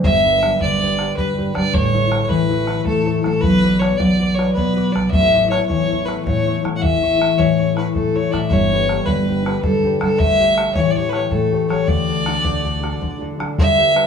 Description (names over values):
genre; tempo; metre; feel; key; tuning
celtic folk, Celtic slip jig; 106 BPM (dotted quarters); 9/8; straight; unclear; A4 = 439 Hz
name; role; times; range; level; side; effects
rich fiddle; melody; 0.0-14.1 s; A4 to F#5; -18 LUFS; left 1 dB; none
concert harp; accompaniment; 0.0-14.1 s; D3 to D5; -20 LUFS; left 3 dB; none
upright bass; bass; 0.0-13.5 s; G1 to D3; -22 LUFS; right 1 dB; none
bodhran; percussion; 0.0-14.0 s; none; -24 LUFS; left 1 dB; none
room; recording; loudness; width
wet studio reverb, RT60 0.7 s; band playing live in one room; -15 LUFS; side -7 dB against mid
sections
0.0-13.6 A section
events
none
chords
0.0 G; 1.7 A; 3.4 Bm; 5.1 A; 8.5 G; 10.2 A7; 11.9 D